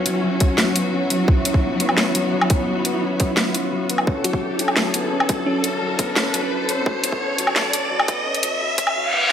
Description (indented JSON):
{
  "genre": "half-time drum and bass",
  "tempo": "172 BPM",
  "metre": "4/4",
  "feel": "half-time",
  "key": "unclear",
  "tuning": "A4 = 438 Hz",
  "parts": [
    { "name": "warm studio string section", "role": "sustained chords", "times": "0.0-8.9 s", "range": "D3 to A4", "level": "-26 LUFS", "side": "left 1 dB", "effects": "sidechain pumping" },
    { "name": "felt-muted upright piano", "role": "arpeggios", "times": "0.0-9.3 s", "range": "F#3 to C#4", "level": "-25 LUFS", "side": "left 3 dB", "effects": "low-pass filter, tape echo" },
    { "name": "riser and reverse cymbal", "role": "sound effects", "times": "1.7-9.3 s", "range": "none", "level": "-25 LUFS", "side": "right 1 dB", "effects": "none" },
    { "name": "flickering grainy texture", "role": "texture", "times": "0.0-9.0 s", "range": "E4", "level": "-32 LUFS", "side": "right 5 dB", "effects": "built-in reverb" },
    { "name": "drum and bass drum kit", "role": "drums", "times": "0.1-8.9 s", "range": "hi-hat, snare drum, woodblock", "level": "-20 LUFS", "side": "equal", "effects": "overdrive, studio reverb" },
    { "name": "electronic kick drum", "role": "drums", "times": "0.4-8.9 s", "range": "none", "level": "-19 LUFS", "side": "equal", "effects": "overdrive, studio reverb" },
    { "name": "bell-like FM electric piano", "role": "melody", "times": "4.2-6.9 s", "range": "C#4 to F#4", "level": "-30 LUFS", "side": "right 2 dB", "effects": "chorus, tremolo, tape echo" }
  ],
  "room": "moderate lush hall reverb, RT60 1.7 s",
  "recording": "high-pass filter",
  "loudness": "-18 LUFS",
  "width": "side -8 dB against mid",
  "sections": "0.0-9.3 A section",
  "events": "build-up 0.0-9.3; filter sweep on felt piano 0.0-9.3; filter sweep 0.0-9.3; riser 1.7-9.3; reverse cymbal 9.0-9.3",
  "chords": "0.0 F#5; 4.1 Dmaj13",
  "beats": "0.24 0.58 0.93 | 1.28 1.63 1.98 2.33 | 2.68 3.03 3.38 3.72 | 4.07 4.42 4.77 5.12 | 5.47 5.82 6.17 6.51 | 6.86 7.21 7.56 7.91 | 8.26 8.61 8.96 9.30"
}